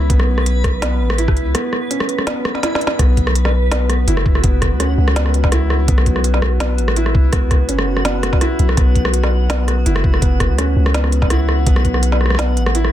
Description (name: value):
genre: half-time drum and bass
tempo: 166 BPM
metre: 4/4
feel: swing 54% on 16ths, half-time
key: unclear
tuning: A4 = 439 Hz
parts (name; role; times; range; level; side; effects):
- felt-muted upright piano; arpeggios; 0.0-12.9 s; B3 to E4; -22 LUFS; right 1 dB; digital delay
- long sustained 808-style bass; bass; 0.0-12.9 s; F#1 to D2; -16 LUFS; equal; none
- backwards swelling texture; texture; 0.0-12.9 s; F#4 to B4; -28 LUFS; right 2 dB; built-in reverb
- electronic kick drum; drums; 0.1-11.9 s; none; -16 LUFS; equal; none
- organic electronic drum kit; drums; 0.1-12.9 s; hi-hat, rim click, snare drum; -21 LUFS; equal; none
room: digital ambience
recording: dense, heavily limited modern master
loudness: -13 LUFS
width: side -12 dB against mid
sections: 0.0-3.0 A section; 3.0-12.9 A section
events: drop 0.0-3.0, 3.0-12.9; break 1.5-3.0; drum fill 2.6-3.0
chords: 0.0 N.C.; 3.0 B5